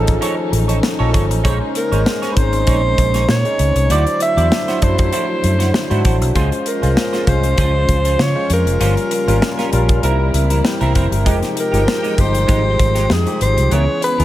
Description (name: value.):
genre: polished 1980s jazz-funk pop.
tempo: 98 BPM.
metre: 4/4.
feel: swing 54% on 16ths.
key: unclear.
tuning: A4 = 443 Hz.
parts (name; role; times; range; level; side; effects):
breathy alto saxophone; melody; 0.0-14.2 s; Ab4 to E5; -20 LUFS; right 1 dB; none.
barky tine electric piano; accompaniment; 0.0-14.2 s; Fb3 to Bb5; -21 LUFS; left 1 dB; overdrive, analog chorus.
warm studio string section; sustained chords; 0.0-14.2 s; C3 to G5; -29 LUFS; left 2 dB; none.
vintage muted fingered electric bass; bass; 0.0-14.2 s; F1 to Db3; -16 LUFS; equal; none.
semi-hollow electric guitar; riff; 0.1-14.2 s; Ab3 to D5; -26 LUFS; right 4 dB; analog chorus.
modern studio drum kit; drums; 0.1-14.2 s; hi-hat, kick drum, snare drum; -19 LUFS; equal; none.
room: light reverb, studio ambience.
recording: none.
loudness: -13 LUFS.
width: side -14 dB against mid.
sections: 0.0-14.2 A section.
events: tine electric piano fill 10.0-11.3.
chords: 0.0 F7b13; 1.4 Bbm11; 3.9 D9; 6.4 Dbmaj7; 8.8 Gm7b5; 10.0 C7; 11.3 Fm9; 13.7 Dbm7.